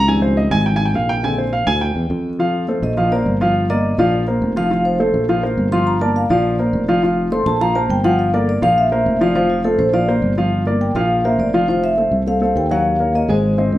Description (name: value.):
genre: Afro-Cuban jazz.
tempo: 207 BPM.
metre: 4/4.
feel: straight.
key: F major.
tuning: A4 = 441 Hz.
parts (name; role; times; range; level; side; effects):
dark baby grand piano; accompaniment; 0.0-13.8 s; D3 to G#5; -17 LUFS; equal; none.
sustaining fretless electric bass; bass; 0.0-13.8 s; F1 to F2; -19 LUFS; equal; none.
vibraphone with medium mallets; melody; 2.8-13.8 s; F4 to C6; -20 LUFS; equal; none.
room: moderate large studio reverb, RT60 0.9 s.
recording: band playing live in one room.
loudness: -14 LUFS.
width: side -14 dB against mid.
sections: 0.0-2.4 A section; 2.4-11.7 A section; 11.7-13.8 B section.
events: grand piano solo 0.0-2.4; vibraphone solo 2.4-11.7.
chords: 0.1 C#maj9#11; 1.2 Bb9; 2.4 F; 3.0 Bbsus2; 3.6 Gm7; 4.1 Bbsus2; 4.7 F; 5.3 Bbsus2; 5.9 Gm7; 6.4 Bbadd9; 7.0 F; 7.6 Bbsus2; 8.2 Gm7; 8.8 Bbsus2; 9.4 F; 9.9 Bbadd9; 10.5 Gm7; 11.1 Bbsus2; 11.7 F; 12.8 Ebm9.